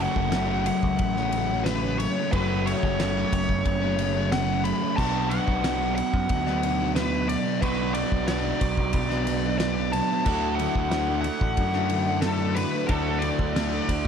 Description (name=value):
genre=classic rock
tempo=91 BPM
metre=4/4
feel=straight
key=B minor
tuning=A4 = 445 Hz
part: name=dark smooth lead guitar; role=melody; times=0.0-14.1 s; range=A4 to B5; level=-29 LUFS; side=left 2 dB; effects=wah, overdrive
part: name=crunchy overdriven guitar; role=riff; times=0.0-14.1 s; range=F#2 to F#4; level=-29 LUFS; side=right 13 dB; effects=spring reverb
part: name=overdriven semi-hollow guitar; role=riff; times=0.0-13.9 s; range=F#2 to D4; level=-29 LUFS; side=left 14 dB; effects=none
part: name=growling picked electric bass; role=bass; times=0.0-14.1 s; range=F#1 to F#2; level=-29 LUFS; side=equal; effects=overdrive
part: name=damped 70s drum kit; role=drums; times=0.2-14.1 s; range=crash cymbal, kick drum, ride cymbal, snare drum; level=-30 LUFS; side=equal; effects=none
part: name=tonewheel organ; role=sustained chords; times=10.3-14.1 s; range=A3 to D5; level=-38 LUFS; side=left 1 dB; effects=none
room=small room ambience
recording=none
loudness=-22 LUFS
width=side -7 dB against mid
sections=0.0-14.1 A section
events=none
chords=0.0 F#m; 5.0 Bm; 10.3 Dadd9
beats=0.34 1.00 1.67 | 2.33 2.99 3.65 4.32 | 4.98 5.64 6.30 6.96 | 7.63 8.29 8.95 9.61 | 10.27 10.93 11.59 12.25 | 12.91 13.57